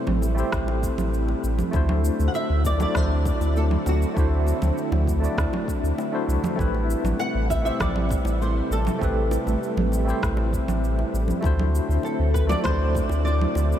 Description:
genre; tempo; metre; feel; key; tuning
sunset chillout; 99 BPM; 4/4; straight; A dorian; A4 = 440 Hz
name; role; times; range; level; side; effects
bright tine electric piano; accompaniment; 0.0-13.8 s; A3 to E5; -28 LUFS; moving between left 4 dB and right 3 dB; fast stereo tremolo, auto-pan, low-pass filter, diffuse ambient delay
soft string machine; sustained chords; 0.0-13.8 s; C3 to E4; -30 LUFS; equal; ensemble chorus
warm sub bass; bass; 0.1-13.7 s; A1 to D2; -23 LUFS; equal; none
electronic congas, cabasa and rim click; drums; 0.1-13.8 s; none; -33 LUFS; right 3 dB; studio reverb
congas and bongos; percussion; 0.1-13.7 s; none; -35 LUFS; right 3 dB; none
electronic kick drum; drums; 0.5-13.1 s; none; -28 LUFS; equal; studio reverb
flamenco guitar; melody; 2.3-13.8 s; F#4 to F#5; -31 LUFS; left 1 dB; analog chorus, diffuse ambient delay
room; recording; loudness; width
moderate huge ambient reverb, RT60 8.2 s; dreamy mix soaked in reverb; -21 LUFS; side -10 dB against mid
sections
0.0-13.8 A section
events
none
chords
0.0 Am9; 1.7 D9; 6.6 Am9; 11.4 D9

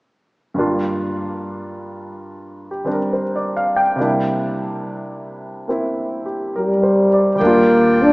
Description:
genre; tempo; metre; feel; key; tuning
jazz ballad; 70 BPM; 4/4; swing 67% on 8ths; unclear; A4 = 440 Hz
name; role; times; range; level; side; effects
warm concert grand piano; accompaniment; 0.5-8.1 s; G2 to G5; -20 LUFS; equal; none
breathy trombone; melody; 6.6-8.1 s; G3 to D4; -13 LUFS; equal; none
clear saxophone section; sustained chords; 7.4-8.1 s; F4 to G5; -21 LUFS; equal; none
upright bass; bass; 7.4-8.1 s; Eb2; -25 LUFS; equal; none
room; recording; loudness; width
wet church reverb, RT60 2.8 s; recorded in a church or concert hall, small speaker sound; -16 LUFS; side -25 dB against mid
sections
0.6-7.4 A section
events
none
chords
0.6 Gm7; 4.0 C9; 7.4 Ebmaj9

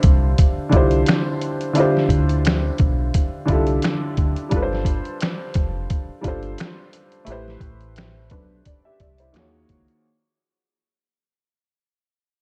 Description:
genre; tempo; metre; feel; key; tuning
lo-fi hip hop; 87 BPM; 4/4; swing 56% on 16ths; D dorian; A4 = 440 Hz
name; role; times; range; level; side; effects
warm upright piano; accompaniment; 0.0-10.1 s; D3 to E5; -24 LUFS; equal; low-pass filter
deep dub fingered electric bass; bass; 0.0-9.9 s; F1 to Eb2; -25 LUFS; equal; none
trip hop sampler-style drum kit; drums; 0.0-10.0 s; finger snaps, hi-hat, kick drum, snare drum; -22 LUFS; equal; none
room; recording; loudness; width
light reverb; dark, warm production; -20 LUFS; mono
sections
0.0-10.0 A section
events
fade-out 0.0-10.0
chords
0.0 Dm11; 4.5 G9sus4; 7.3 Am9; 9.3 Ebm11

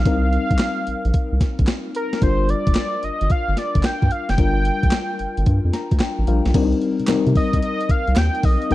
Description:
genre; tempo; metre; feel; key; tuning
R&B, new jack swing; 111 BPM; 4/4; swing 67% on 16ths; C minor; A4 = 439 Hz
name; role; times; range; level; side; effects
octave-doubled lead; melody; 0.0-8.7 s; Bb4 to G5; -25 LUFS; equal; chorus
FM electric piano with soft pad layer; accompaniment; 0.0-8.7 s; G3 to Bb5; -24 LUFS; left 5 dB; chorus, tremolo
round analog bass; bass; 0.0-8.7 s; F1 to C3; -20 LUFS; equal; none
gated 80s digital drum machine; drums; 0.1-8.7 s; crash cymbal, handclaps, hi-hat, kick drum, snare drum; -20 LUFS; equal; gated reverb, gated reverb snare, vintage 12-bit sampler grit
group handclap; percussion; 7.1-8.3 s; none; -39 LUFS; right 8 dB; none
room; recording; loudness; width
little or no reverb; dry, close 1970s-style studio recording; -17 LUFS; side -16 dB against mid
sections
0.0-6.5 A section; 6.5-8.7 B section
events
FM electric piano fill 5.5-6.5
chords
0.0 Cm7; 2.2 Gm7; 6.5 Cm7

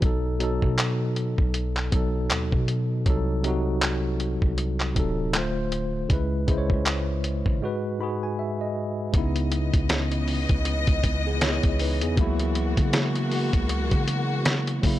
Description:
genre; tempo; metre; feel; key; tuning
contemporary R&B; 79 BPM; 4/4; swing 58% on 16ths; C# minor; A4 = 441 Hz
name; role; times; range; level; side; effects
tine electric piano; accompaniment; 0.0-15.0 s; G#2 to B5; -27 LUFS; equal; fast stereo tremolo
long sustained 808-style bass; bass; 0.0-15.0 s; D1 to C#3; -27 LUFS; equal; none
dusty soul sampler-style drum kit; drums; 0.0-15.0 s; handclaps, hi-hat, kick drum, rim click, snare drum; -24 LUFS; equal; none
warm studio string section; sustained chords; 9.1-15.0 s; C#3 to D#5; -30 LUFS; left 1 dB; none
room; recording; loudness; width
digital ambience; dry, gritty hardware recording; -22 LUFS; side -14 dB against mid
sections
0.0-9.1 A section; 9.1-15.0 B section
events
break 7.6-9.1; tine electric piano fill 7.6-9.1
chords
0.0 B7; 3.1 D7b9; 5.3 Dm7; 6.1 C#m7; 7.6 G#m7; 9.1 C#m9; 12.2 F#9/C#

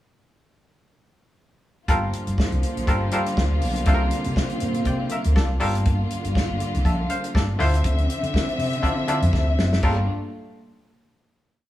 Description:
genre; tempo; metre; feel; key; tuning
disco; 121 BPM; 4/4; swing 56% on 16ths; G dorian; A4 = 439 Hz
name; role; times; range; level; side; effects
muted clav; accompaniment; 1.9-10.1 s; C3 to A5; -27 LUFS; left 1 dB; overdrive
warm studio string section; sustained chords; 1.9-10.1 s; Bb2 to E5; -27 LUFS; equal; none
fingered electric bass; bass; 1.9-10.1 s; F#1 to D3; -23 LUFS; equal; none
warm soul drum kit; drums; 1.9-10.0 s; crash cymbal, hi-hat, kick drum, snare drum; -25 LUFS; equal; none
room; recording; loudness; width
moderate stone room reverb, RT60 1.3 s; band playing live in one room, small room ambience; -20 LUFS; side -14 dB against mid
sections
1.9-9.8 verse; 9.8-11.7 final chord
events
drum fill 9.3-9.8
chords
1.9 Gm9; 3.9 C9sus4; 5.6 Gm9; 7.6 Dm9; 9.8 Gm9

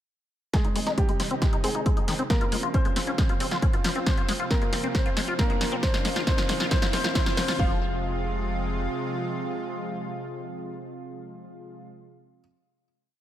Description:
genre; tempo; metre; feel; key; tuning
uplifting trance; 136 BPM; 4/4; straight; F minor; A4 = 443 Hz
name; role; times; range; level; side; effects
dark grand piano; second line; 0.5-12.4 s; G3 to F5; -31 LUFS; left 1 dB; digital delay
lush unison pad; sustained chords; 0.5-11.9 s; C3 to F4; -33 LUFS; right 1 dB; chorus, sidechain pumping
liquid acid bass; arpeggios; 0.5-7.8 s; Eb3 to F4; -31 LUFS; left 3 dB; analog chorus, cassette tape, sidechain pumping, digital delay
electronic kick drum; drums; 0.5-7.7 s; none; -24 LUFS; equal; none
punchy analog drum machine; drums; 0.5-7.6 s; hi-hat, snare drum; -30 LUFS; equal; sidechain pumping on hats
riser; sound effects; 2.9-7.6 s; none; -38 LUFS; right 1 dB; none
tight sequencer bass; bass; 0.6-8.9 s; F1 to Eb2; -37 LUFS; equal; none
room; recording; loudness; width
light reverb; none; -23 LUFS; side -12 dB against mid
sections
0.5-7.6 build; 7.6-11.1 final chord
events
build-up 0.5-7.6; drum fill 0.5-7.6; filter sweep on acid bass 0.5-7.6; riser 2.9-7.6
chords
0.5 Ab; 2.3 Db; 4.1 F5; 5.8 Bbm; 7.6 Fm

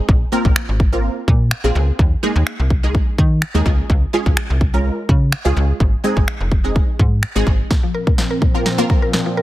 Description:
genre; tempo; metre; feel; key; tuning
dance-pop; 126 BPM; 4/4; straight; Bb minor; A4 = 440 Hz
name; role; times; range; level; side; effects
wide unison pluck; accompaniment; 0.0-9.4 s; Ab3 to Bb4; -21 LUFS; right 1 dB; ensemble chorus, sidechain pumping
slap-like FM bass; bass; 0.1-7.6 s; F1 to Eb3; -17 LUFS; equal; sidechain pumping
house drum kit; drums; 0.1-9.3 s; finger snaps, kick drum, snare drum; -16 LUFS; equal; soft clipping on snare
sweeping resonant pad; sustained chords; 7.7-9.4 s; Bb2 to C4; -23 LUFS; equal; chorus, sidechain pumping
mallet-like synth pluck; arpeggios; 7.7-9.4 s; Bb2 to Bb4; -22 LUFS; left 2 dB; chorus, phaser, sidechain pumping, digital delay
room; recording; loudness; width
little or no reverb; dense, heavily limited modern master; -14 LUFS; side -15 dB against mid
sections
0.0-7.7 A section; 7.7-9.4 B section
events
build-up 7.7-9.4; drum fill 7.7-9.4; filter sweep 7.7-9.4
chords
0.1 Bbsus2; 2.0 Ebsus4; 3.7 Db; 5.8 Ab; 7.7 Bbsus2

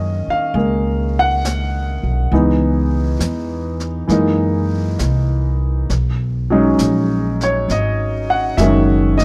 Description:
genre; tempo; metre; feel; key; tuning
jazz ballad; 67 BPM; 4/4; swing 68% on 8ths; F# major, B major from 5.9 s; A4 = 441 Hz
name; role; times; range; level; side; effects
warm concert grand piano; accompaniment; 0.0-9.2 s; D#3 to F#5; -19 LUFS; equal; none
upright bass; bass; 0.0-9.2 s; F#1 to F#2; -21 LUFS; equal; none
jazz brush drum kit; drums; 0.6-9.2 s; brushed snare drum, hi-hat, snare drum; -31 LUFS; equal; none
room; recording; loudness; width
studio reverb; dry, close 1970s-style studio recording; -17 LUFS; mono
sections
0.0-5.9 A section; 5.9-9.2 B section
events
none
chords
0.0 F#69; 2.3 C#m7; 4.1 F#13; 5.9 B69

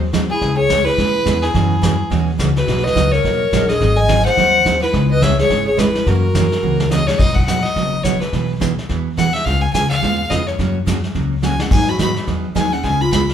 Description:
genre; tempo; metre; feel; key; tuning
country, western swing; 212 BPM; 4/4; swing 59% on 8ths; B major; A4 = 441 Hz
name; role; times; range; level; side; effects
picked steel-string acoustic guitar; accompaniment; 0.0-13.2 s; B2 to G#4; -21 LUFS; right 5 dB; none
upright bass; bass; 0.0-13.3 s; F#1 to G#2; -20 LUFS; left 2 dB; none
vintage brush drum kit; drums; 0.1-13.3 s; brushed snare drum, crash cymbal, hi-hat, kick drum, snare drum; -21 LUFS; left 1 dB; none
clear fiddle; melody; 0.3-13.3 s; G#4 to B5; -19 LUFS; left 1 dB; none
breathy clarinet; second line; 0.3-6.9, 11.4-13.3 s; C#4 to D#5; -21 LUFS; equal; none
room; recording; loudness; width
moderate large studio reverb, RT60 0.8 s; band playing live in one room; -14 LUFS; side -9 dB against mid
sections
0.0-7.2 A section; 7.2-13.3 B section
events
drum fill 6.6-7.2, 11.4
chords
0.4 C#m7; 1.5 F#9sus4; 2.7 Bmaj7; 3.8 G#7; 4.9 C#m7; 6.1 F#7; 7.2 B; 8.3 E/B; 9.5 C#7; 10.6 F#; 11.7 G#m7; 12.8 C#7

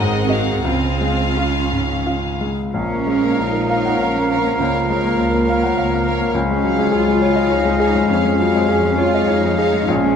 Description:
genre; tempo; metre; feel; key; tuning
classical, romantic movement for piano and orchestra; 85-105 BPM; 3/4; rubato; Bb minor; A4 = 440 Hz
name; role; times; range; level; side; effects
clear grand piano; melody; 0.0-10.2 s; Bb1 to Gb5; -19 LUFS; left 3 dB; none
warm studio violin section; melody; 0.0-9.9 s; F5 to Gb5; -29 LUFS; left 5 dB; none
rich chamber violin section; second line; 0.0-9.9 s; Ab4 to F5; -27 LUFS; left 5 dB; none
rich chamber viola section; accompaniment; 0.0-9.9 s; F4 to Bb4; -28 LUFS; right 2 dB; none
warm studio double bass section; bass; 0.0-10.2 s; Ab1 to F2; -25 LUFS; right 5 dB; none
warm symphonic cello section; bass; 0.0-10.2 s; Ab3 to F4; -23 LUFS; right 5 dB; none
timpani; percussion; 0.6-1.7 s; Db3; -34 LUFS; right 2 dB; none
clear oboe; second line; 2.7-10.2 s; F5; -26 LUFS; right 2 dB; none
mellow hollow concert flute; second line; 2.7-10.2 s; Ab5 to Bb5; -26 LUFS; left 2 dB; none
dark bassoon; accompaniment; 2.7-10.2 s; F3; -27 LUFS; right 5 dB; none
warm French horn section; sustained chords; 2.7-10.2 s; Ab3 to F4; -24 LUFS; left 4 dB; none
room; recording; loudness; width
light reverb; close, detailed microphones; -15 LUFS; side -7 dB against mid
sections
0.0-2.7 A section; 2.7-10.2 B section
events
none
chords
0.0 Ab7; 0.7 Db; 2.7 Bbm; 4.6 Bbm/Db; 6.3 Db; 8.1 Db/F

